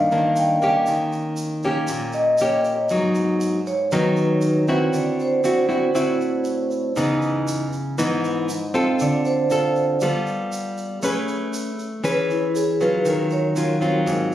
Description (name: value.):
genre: bossa nova.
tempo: 118 BPM.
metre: 4/4.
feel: straight.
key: unclear.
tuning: A4 = 439 Hz.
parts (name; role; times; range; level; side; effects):
nylon-string guitar; accompaniment; 0.0-14.3 s; G2 to B4; -21 LUFS; equal; none.
vibraphone with soft mallets; accompaniment; 0.0-14.1 s; E4 to G5; -22 LUFS; right 1 dB; none.
egg shaker; percussion; 0.1-14.3 s; none; -38 LUFS; right 3 dB; none.
room: wet large studio reverb, RT60 1.3 s.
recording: recorded on a phone in the room, studio reverb, compression.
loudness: -19 LUFS.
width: side -12 dB against mid.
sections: 0.0-2.9 A section; 2.9-14.3 A section.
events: vibraphone solo 0.0-14.3.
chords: 0.0 Cm9 (rootless); 0.9 Eb7; 2.9 G#m7; 4.9 D9; 7.0 C#m9; 9.0 Dm7; 10.0 G9; 11.0 Amaj9; 13.1 D#m9.